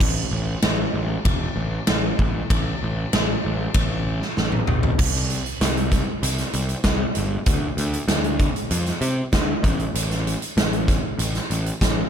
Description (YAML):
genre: quiet-loud alternative rock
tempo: 96 BPM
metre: 4/4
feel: straight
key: unclear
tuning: A4 = 440 Hz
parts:
  - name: fuzz picked electric bass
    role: bass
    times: 0.0-12.0 s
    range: E1 to C3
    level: -24 LUFS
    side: equal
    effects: overdrive
  - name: big rock drum kit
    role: drums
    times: 0.0-12.0 s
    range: crash cymbal, hi-hat, kick drum, ride cymbal, snare drum, toms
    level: -22 LUFS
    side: equal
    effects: none
room: little or no reverb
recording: none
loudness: -20 LUFS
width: side -8 dB against mid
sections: 0.0-5.0 A section; 5.0-12.1 B section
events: drum fill 4.4-5.0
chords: none